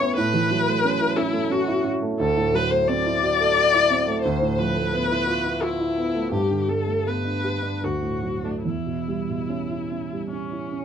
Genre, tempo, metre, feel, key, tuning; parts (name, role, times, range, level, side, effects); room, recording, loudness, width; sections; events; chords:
classical, impressionist duo for viola and grand piano; 69-91 BPM; 3/4; rubato; A4 = 443 Hz
rich viola; melody; 0.0-10.8 s; C#4 to D5; -23 LUFS; left 3 dB
warm grand piano; accompaniment; 0.0-10.8 s; D2 to A4; -24 LUFS; right 2 dB
moderate studio reverb, RT60 0.5 s; dark, warm production; -20 LUFS; side -8 dB against mid
0.0-10.8 A section
0.2 F#m7/A; 2.2 D9; 4.2 Fmaj7#11/D; 6.3 Gadd9; 7.8 D; 8.6 Em6